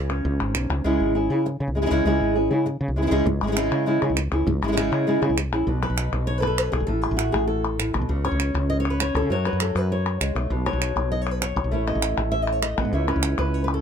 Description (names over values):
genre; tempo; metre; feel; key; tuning
flamenco; 199 BPM; 4/4; straight; C# minor; A4 = 440 Hz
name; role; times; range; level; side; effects
flamenco guitar; melody; 0.0-13.8 s; G#2 to E5; -23 LUFS; equal; none
woody fretless electric bass; bass; 0.0-13.8 s; G#1 to C#3; -25 LUFS; equal; none
palmas hand claps; percussion; 0.1-0.9, 3.4-13.8 s; none; -29 LUFS; left 1 dB; none
room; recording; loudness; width
little or no reverb; close, detailed microphones; -21 LUFS; side -7 dB against mid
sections
0.9-5.7 A section; 5.7-13.8 B section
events
none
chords
0.0 C#5; 0.9 C#m; 5.7 B; 6.9 F#madd9/A; 8.1 Bsus2/C#; 9.3 F#m; 10.5 B5; 11.7 A; 12.9 C#m